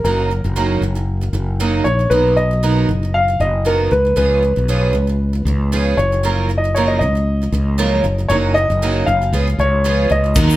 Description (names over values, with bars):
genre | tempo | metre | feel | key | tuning
acoustic pop | 116 BPM | 4/4 | swing 55% on 16ths | unclear | A4 = 440 Hz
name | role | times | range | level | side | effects
warm upright piano | melody | 0.0-10.6 s | A#4 to E#5 | -18 LUFS | left 1 dB | none
picked twelve-string acoustic guitar | accompaniment | 0.0-10.6 s | F#2 to A#4 | -21 LUFS | right 4 dB | none
fretless electric bass | bass | 0.0-10.6 s | F#1 to D#2 | -17 LUFS | equal | none
loose indie drum kit | drums | 10.4-10.5 s | crash cymbal, kick drum | -14 LUFS | left 1 dB | none
egg shaker | percussion | 10.4-10.6 s | none | -29 LUFS | left 7 dB | none
room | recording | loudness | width
moderate large studio reverb, RT60 0.8 s | band playing live in one room | -14 LUFS | side -15 dB against mid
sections
0.0-10.4 A section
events
none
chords
0.0 D#m7/F#; 2.1 Bmaj7; 3.9 C#7; 6.0 F#maj7; 8.0 D#m7/F#; 9.3 C#7